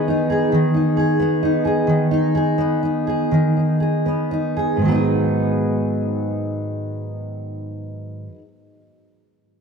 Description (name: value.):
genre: pop.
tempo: 38-46 BPM (dotted quarters).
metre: 6/8.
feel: straight.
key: G# minor.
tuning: A4 = 440 Hz.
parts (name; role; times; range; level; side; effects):
fingerpicked steel-string acoustic guitar; accompaniment; 0.0-8.5 s; G#2 to G#4; -18 LUFS; equal; double-tracked left and right.
room: moderate plate reverb, RT60 3.4 s.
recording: dark, warm production.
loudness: -17 LUFS.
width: side -5 dB against mid.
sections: 0.0-4.8 A section; 4.8-8.0 B section.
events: slowing down 0.0-4.8.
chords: 0.0 G#m/D#; 4.8 G#m7.